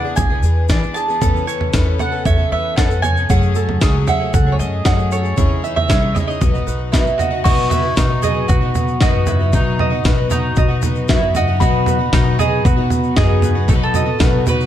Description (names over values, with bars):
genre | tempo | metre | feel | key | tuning
indie folk with a building arrangement | 115 BPM | 4/4 | straight | unclear | A4 = 439 Hz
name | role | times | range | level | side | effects
mandolin | melody | 0.0-14.7 s | D#4 to A5 | -22 LUFS | right 2 dB | none
fingerpicked steel-string acoustic guitar | accompaniment | 0.0-1.2 s | E2 to E4 | -39 LUFS | left 1 dB | none
picked plugged-in twelve-string acoustic guitar | accompaniment | 0.0-14.7 s | F#2 to A4 | -23 LUFS | left 8 dB | none
ukulele | arpeggios | 0.0-14.7 s | E4 to F#5 | -25 LUFS | right 6 dB | slapback echo
upright bass | bass | 0.2-14.7 s | B1 to E3 | -19 LUFS | equal | none
breakbeat sampler-style drum kit | drums | 0.2-14.6 s | crash cymbal, kick drum, snare drum, toms | -17 LUFS | right 1 dB | none
tube shaker | percussion | 0.2-14.7 s | none | -34 LUFS | left 10 dB | none
glockenspiel with rubber mallets | second line | 7.4-14.7 s | B5 to C#6 | -26 LUFS | right 1 dB | none
room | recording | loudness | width
light reverb | dark, warm production | -14 LUFS | side -11 dB against mid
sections
0.0-7.5 A section; 7.5-14.7 B section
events
none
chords
0.0 E7; 1.2 Aadd9/E; 3.3 F#madd9; 5.4 C#madd9/E; 6.4 B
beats
0.17 0.69 | 1.21 1.73 2.25 2.77 | 3.29 3.81 4.33 4.85 | 5.37 5.89 6.41 6.93 | 7.45 7.97 8.49 9.01 | 9.53 10.05 10.57 11.09 | 11.61 12.13 12.65 13.17 | 13.69 14.21